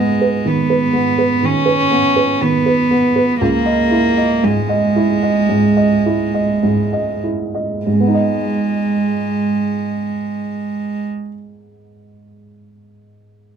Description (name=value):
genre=neoclassical piano and strings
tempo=48-63 BPM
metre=4/4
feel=rubato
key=G# minor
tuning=A4 = 439 Hz
part: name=warm cello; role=second line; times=0.0-11.1 s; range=G#3 to C#4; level=-16 LUFS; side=right 2 dB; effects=none
part: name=dark upright piano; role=accompaniment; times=0.0-13.6 s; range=C#2 to D#5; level=-17 LUFS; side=right 2 dB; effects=none
room=light reverb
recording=close, detailed microphones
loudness=-14 LUFS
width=side -7 dB against mid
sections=0.0-7.9 A section; 7.9-12.7 B section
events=slowing down 0.0-7.9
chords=0.0 G#m; 3.4 C#madd9; 7.9 G#m